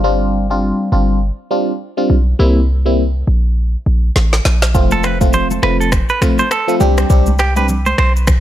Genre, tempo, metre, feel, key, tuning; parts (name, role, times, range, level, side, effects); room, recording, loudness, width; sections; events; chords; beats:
afrobeats; 102 BPM; 4/4; swing 58% on 16ths; A4 = 441 Hz
barking FM electric piano; accompaniment; 0.0-7.7 s; F3 to G4; -16 LUFS; equal; phaser
warm 808-style bass; bass; 0.0-8.4 s; F1 to C2; -14 LUFS; equal
afro-pop drum kit; drums; 4.2-8.4 s; finger snaps, kick drum, rim click, shaker, snare drum; -16 LUFS; equal
direct-recorded clean electric guitar; riff; 4.9-8.1 s; G4 to C5; -18 LUFS; right 4 dB; tape echo
congas; percussion; 4.9-8.4 s; -24 LUFS; left 2 dB
little or no reverb; -12 LUFS; side -12 dB against mid
0.0-8.4 A section
drum fill 4.2-4.7
0.0 G7sus4; 2.4 C7; 4.7 F; 6.8 Csus2
| 0.04 0.63 1.22 1.80 | 2.39 2.98 3.57 4.16 | 4.75 5.33 5.92 6.51 | 7.10 7.69 8.28